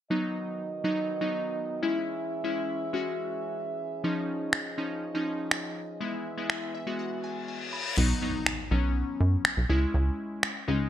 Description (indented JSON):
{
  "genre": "dance-pop",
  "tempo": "122 BPM",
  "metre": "4/4",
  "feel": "straight",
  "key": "B major",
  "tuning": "A4 = 440 Hz",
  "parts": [
    { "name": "glassy digital keys", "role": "accompaniment", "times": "0.1-10.9 s", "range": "E#3 to B5", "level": "-31 LUFS", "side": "left 2 dB", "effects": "chorus" },
    { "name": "warm French horn section", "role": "sustained chords", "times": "0.1-8.0 s", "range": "D#3 to E5", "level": "-35 LUFS", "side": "right 3 dB", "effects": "none" },
    { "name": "punchy analog drum machine", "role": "drums", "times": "4.5-10.5 s", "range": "crash cymbal, finger snaps", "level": "-28 LUFS", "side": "equal", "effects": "gated reverb" },
    { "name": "reverse cymbal and impact", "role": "sound effects", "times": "7.3-9.9 s", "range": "none", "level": "-36 LUFS", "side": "left 1 dB", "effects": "none" },
    { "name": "plucky analog bass", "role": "bass", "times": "8.0-10.9 s", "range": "B1 to F#2", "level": "-25 LUFS", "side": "equal", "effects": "none" }
  ],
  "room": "moderate plate reverb, RT60 1.3 s, digital ambience",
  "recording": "bright 1980s-style digital production",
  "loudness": "-27 LUFS",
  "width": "side -11 dB against mid",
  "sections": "0.1-8.0 A section; 8.0-10.9 B section",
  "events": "synth keys fill 6.5-8.0; silent gap 7.0-8.0; reverse cymbal 7.3-8.0; impact 8.0-9.9",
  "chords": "0.1 B; 1.8 C#m; 4.0 C#add9; 6.0 E; 8.0 B; 9.7 C#m"
}